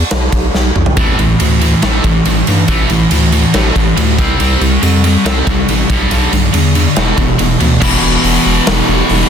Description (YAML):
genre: hard rock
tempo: 140 BPM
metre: 4/4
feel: straight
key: A minor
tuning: A4 = 440 Hz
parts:
  - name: saturated sub bass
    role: bass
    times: 0.0-9.2 s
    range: E1 to G2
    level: -14 LUFS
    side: equal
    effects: none
  - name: big rock drum kit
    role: drums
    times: 0.1-9.2 s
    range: crash cymbal, hi-hat, kick drum, ride cymbal, snare drum, toms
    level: -14 LUFS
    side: equal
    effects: soft clipping on snare
  - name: scooped high-gain guitar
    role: riff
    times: 1.0-9.3 s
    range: E2 to C4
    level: -12 LUFS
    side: equal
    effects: distortion
room: light reverb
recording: dense, heavily limited modern master, faint mains hum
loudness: -9 LUFS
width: side -8 dB against mid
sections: 0.0-7.8 A section; 7.8-9.3 B section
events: drum fill 0.5-1.0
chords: 0.0 N.C.; 1.0 A5; 4.2 C5; 5.9 G/B; 7.0 E5